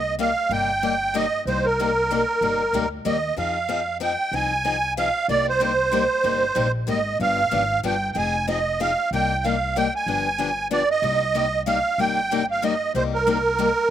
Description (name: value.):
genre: acoustic string swing (jazz manouche).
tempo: 188 BPM.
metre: 3/4.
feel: swing 59% on 8ths.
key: C minor.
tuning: A4 = 437 Hz.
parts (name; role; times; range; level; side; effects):
musette accordion; melody; 0.0-13.9 s; Bb4 to Ab5; -21 LUFS; right 3 dB; slapback echo.
upright bass; bass; 0.0-13.7 s; F1 to F2; -30 LUFS; equal; none.
picked steel-string acoustic guitar; accompaniment; 0.2-13.7 s; C3 to Ab4; -27 LUFS; left 10 dB; slapback echo.
room: little or no reverb.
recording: recorded outdoors, with no room sound.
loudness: -20 LUFS.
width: side -10 dB against mid.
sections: 0.0-11.0 A section; 11.0-13.9 A section.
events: none.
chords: 0.0 Cm7; 3.4 Fm7; 5.3 Cm7; 7.2 G7b9; 8.2 Fm7; 9.1 Cm7; 10.1 G7b9; 11.0 Cm7.